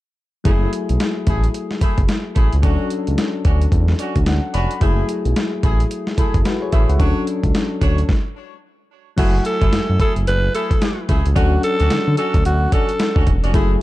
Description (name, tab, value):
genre	R&B, new jack swing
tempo	110 BPM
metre	4/4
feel	swing 60% on 16ths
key	F# minor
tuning	A4 = 443 Hz
part	soft electric-piano-like synth keys	accompaniment	0.4-13.8 s	F#3 to B5	-24 LUFS	left 3 dB	chorus
part	warm horn section	stabs	0.4-13.7 s	A3 to C#5	-29 LUFS	right 1 dB	ping-pong delay
part	smooth synth bass	bass	0.5-13.8 s	E1 to D3	-18 LUFS	equal	none
part	dusty soul sampler-style drum kit	drums	0.5-13.7 s	crash cymbal, hi-hat, kick drum, snare drum	-19 LUFS	equal	overdrive, vintage 12-bit sampler grit
part	raspy alto saxophone	melody	9.2-13.3 s	F#4 to B4	-22 LUFS	equal	none
room	little or no reverb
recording	dark, warm production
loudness	-15 LUFS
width	side -17 dB against mid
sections	0.5-9.2 A section; 9.2-13.8 B section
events	synth keys fill 4.0-4.8; stop 8.1-9.2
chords	0.5 F#m9; 2.6 Dmaj7; 4.8 F#m9; 7.0 Dmaj7; 9.2 F#m9; 11.4 Dmaj7